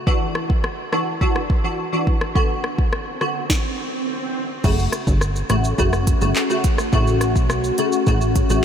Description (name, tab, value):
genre	dancehall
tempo	105 BPM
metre	4/4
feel	straight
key	unclear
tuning	A4 = 440 Hz
part	wavetable chord stab	accompaniment	0.1-8.6 s	C#3 to F#4	-23 LUFS	equal	ensemble chorus
part	afro-pop drum kit	drums	0.1-8.6 s	crash cymbal, handclaps, hi-hat, kick drum, rim click, shaker, snare drum	-21 LUFS	equal	none
part	swell	sound effects	3.0-4.6 s	none	-31 LUFS	right 4 dB	none
part	glassy FM pad	sustained chords	5.5-8.6 s	A3 to F#4	-24 LUFS	left 3 dB	ensemble chorus, built-in reverb, sidechain pumping
part	plucky analog bass	bass	4.6-8.6 s	F#1 to B1	-20 LUFS	equal	none
room	moderate huge ambient reverb, RT60 7.8 s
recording	dreamy mix soaked in reverb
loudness	-18 LUFS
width	side -8 dB against mid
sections	0.0-4.6 A section; 4.6-8.6 B section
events	swell 3.0-4.6; stop 3.5-4.6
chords	0.1 Dadd9; 2.4 Bm; 4.6 F#m; 6.9 A6